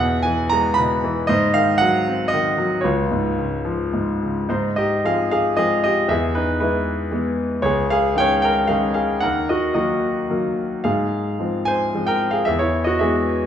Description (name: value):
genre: classical, lyrical solo piano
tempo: 114 BPM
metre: 3/4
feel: rubato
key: unclear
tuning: A4 = 437 Hz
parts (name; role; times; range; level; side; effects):
- bright concert grand piano; solo; 0.0-13.5 s; Db2 to B5; -18 LUFS; equal; none
room: wet recital hall reverb, RT60 1.4 s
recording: recorded in a church or concert hall, nothing above 10.4 kHz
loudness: -18 LUFS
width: side -9 dB against mid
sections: 0.0-4.5 A section; 4.5-13.5 B section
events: none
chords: 0.0 E; 1.3 Ab7; 2.8 Db; 4.5 Ab6; 6.1 E; 7.6 Dbsus2; 9.2 Ebm; 10.9 Ab6; 12.5 E